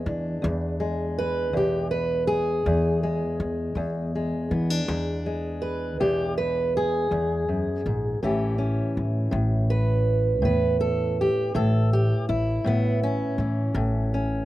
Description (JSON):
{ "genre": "acoustic country blues, solo or duo", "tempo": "54 BPM (dotted quarters)", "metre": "12/8", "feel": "straight", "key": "E mixolydian", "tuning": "A4 = 440 Hz", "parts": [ { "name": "fingerpicked steel-string acoustic guitar", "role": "melody", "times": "0.0-14.4 s", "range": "E2 to B4", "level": "-24 LUFS", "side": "equal", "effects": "none" }, { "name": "upright bass", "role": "bass", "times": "0.1-14.4 s", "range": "A1 to E3", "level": "-27 LUFS", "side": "equal", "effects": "none" } ], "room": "little or no reverb", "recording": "recorded outdoors, with no room sound", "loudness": "-22 LUFS", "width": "side -15 dB against mid", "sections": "0.0-14.4 A section", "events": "none", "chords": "0.0 E7; 8.2 A7" }